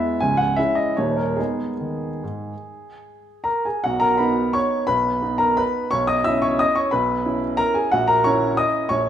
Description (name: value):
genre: classical, piano waltz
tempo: 140-198 BPM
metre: 3/4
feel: rubato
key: G# minor, B major from 3.9 s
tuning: A4 = 440 Hz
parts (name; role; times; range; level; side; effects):
- clear baby grand piano; solo; 0.0-9.1 s; C#1 to E6; -18 LUFS; equal; none
room: moderate recital hall reverb, RT60 1.7 s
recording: recorded in a church or concert hall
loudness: -18 LUFS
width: side -10 dB against mid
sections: 0.0-3.9 A section; 3.9-9.1 B section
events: none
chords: 0.2 C#m; 1.0 D#7; 1.4 G#m; 3.9 B; 5.9 C#m7/B; 7.9 F#7/A#